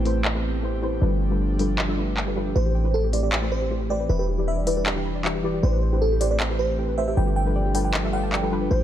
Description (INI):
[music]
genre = future bass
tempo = 156 BPM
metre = 4/4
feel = half-time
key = A minor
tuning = A4 = 440 Hz
[part]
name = soft round pluck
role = accompaniment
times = 0.0-8.8 s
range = E3 to G5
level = -28 LUFS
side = left 1 dB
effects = wide subtle chorus, tape echo
[part]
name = airy breathy pad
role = sustained chords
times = 0.0-8.8 s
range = E3 to G4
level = -31 LUFS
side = right 2 dB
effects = chorus
[part]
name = warm 808-style bass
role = bass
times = 0.0-8.8 s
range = E1 to A1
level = -24 LUFS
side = equal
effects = none
[part]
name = trap drum kit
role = drums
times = 0.1-8.4 s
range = handclaps, hi-hat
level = -28 LUFS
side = equal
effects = low-pass filter on hats, low-pass filter on snare
[part]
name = bell-like FM electric piano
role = melody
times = 2.6-8.8 s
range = A4 to G5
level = -28 LUFS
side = right 1 dB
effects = chorus, tape echo
[part]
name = soft round pluck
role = arpeggios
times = 2.6-8.8 s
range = G4 to B5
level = -34 LUFS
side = left 1 dB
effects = chorus, tape echo
[sound]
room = light reverb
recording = none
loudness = -21 LUFS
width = side -11 dB against mid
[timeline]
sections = 0.0-8.8 A section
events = none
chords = 0.0 Am9; 1.0 G9; 2.6 Am9; 4.1 Em7; 5.6 Am9; 7.2 G9